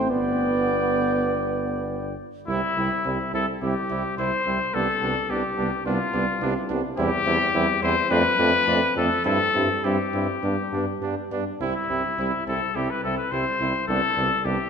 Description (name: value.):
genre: classical, brass quintet.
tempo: 105 BPM.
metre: 4/4.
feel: rubato.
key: C major.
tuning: A4 = 440 Hz.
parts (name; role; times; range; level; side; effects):
clear trumpet; melody; 0.0-14.7 s; E4 to G5; -25 LUFS; left 4 dB; none.
warm trumpet; second line; 0.0-14.6 s; D4 to D5; -30 LUFS; right 6 dB; none.
clear French horn; accompaniment; 0.0-14.6 s; B3 to C4; -30 LUFS; left 1 dB; none.
mellow trombone; accompaniment; 0.0-14.6 s; G3 to B3; -31 LUFS; right 3 dB; none.
warm bass trombone; bass; 0.0-14.6 s; G1 to G2; -29 LUFS; right 1 dB; none.
room: wet concert hall reverb, RT60 2.5 s.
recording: minimal, uncompressed stereo recording.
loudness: -21 LUFS.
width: side -6 dB against mid.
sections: 0.0-2.5 A section; 2.5-14.7 B section.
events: none.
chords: 0.1 G; 2.5 C; 4.7 G7/C; 7.0 C/E; 8.1 Dm7/F; 9.3 C/G; 10.4 G; 11.6 C; 13.9 G/C.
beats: | 0.10 0.71 1.31 1.90 | 2.48 3.05 3.62 4.18 | 4.75 5.30 5.86 6.42 | 6.98 7.54 8.11 8.68 | 9.26 9.85 10.43 11.02 | 11.61 12.19 12.76 13.32 | 13.89 14.46.